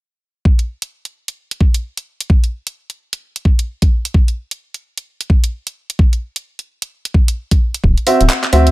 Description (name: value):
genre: UK garage, two-step garage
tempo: 130 BPM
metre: 4/4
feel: swing 60% on 16ths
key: unclear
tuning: A4 = 440 Hz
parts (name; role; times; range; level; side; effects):
- electronic kick drum; drums; 0.5-7.9 s; none; -12 LUFS; equal; overdrive
- garage drum kit; drums; 0.6-8.7 s; handclaps, hi-hat; -20 LUFS; right 1 dB; overdrive
- rubbery square bass; bass; 7.8-8.7 s; D1 to D2; -12 LUFS; equal; none
- warm grand piano; stabs; 8.1-8.7 s; C4 to E5; -13 LUFS; right 2 dB; digital delay
room: little or no reverb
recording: none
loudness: -14 LUFS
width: side -19 dB against mid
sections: 0.5-8.7 A section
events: none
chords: 0.5 N.C.; 7.6 D9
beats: | 0.45 0.91 1.38 1.84 | 2.30 2.76 3.22 3.68 | 4.14 4.61 5.07 5.53 | 5.99 6.45 6.91 7.38 | 7.84 8.30